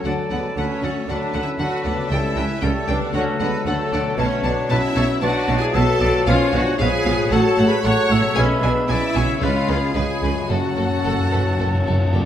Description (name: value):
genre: classical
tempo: 115 BPM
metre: 4/4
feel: rubato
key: F# minor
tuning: A4 = 440 Hz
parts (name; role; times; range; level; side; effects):
- clear studio violin section; second line; 0.0-12.1 s; A4 to C#6; -30 LUFS; equal; none
- concert flute; second line; 0.0-12.3 s; G#5 to B5; -31 LUFS; left 3 dB; none
- warm clarinet; second line; 0.0-12.3 s; A4 to D5; -30 LUFS; left 2 dB; none
- mellow bassoon; accompaniment; 0.0-12.3 s; E#3 to G#3; -28 LUFS; equal; none
- rich studio viola section; accompaniment; 0.0-12.1 s; A3 to C#5; -26 LUFS; equal; none
- dark French horn section; sustained chords; 0.0-12.1 s; F#3 to A4; -26 LUFS; left 3 dB; none
- concert harp; arpeggios; 0.0-12.3 s; F#2 to C#5; -31 LUFS; left 5 dB; none
- rich symphonic double bass section; bass; 0.0-12.2 s; F#1 to D2; -25 LUFS; right 2 dB; none
- rich studio violin section; melody; 0.1-12.2 s; A4 to A5; -31 LUFS; left 3 dB; none
- clear oboe; second line; 0.1-12.3 s; F#4 to F#5; -30 LUFS; right 2 dB; none
- rich symphonic cello section; bass; 0.1-12.2 s; F#2 to D3; -25 LUFS; right 2 dB; none
- timpani; percussion; 2.1-2.8, 9.4-12.3 s; F#2 to C#3; -24 LUFS; left 1 dB; none
room: wet recital hall reverb, RT60 1.4 s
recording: none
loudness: -17 LUFS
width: side -10 dB against mid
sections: 0.0-12.3 A section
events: timpani fill 10.5-12.3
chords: 0.1 D; 2.1 A7/C#; 3.2 D; 4.2 Bm7; 6.3 C#7/B; 7.3 F#m/A; 8.4 B13sus4; 9.4 C#7; 10.5 F#m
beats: | 0.06 0.57 1.09 1.60 | 2.12 2.63 3.15 3.67 | 4.19 4.70 5.22 5.75 | 6.26 6.79 7.31 7.83 | 8.36 8.88 9.41 9.95 | 10.50 11.05 11.60 12.14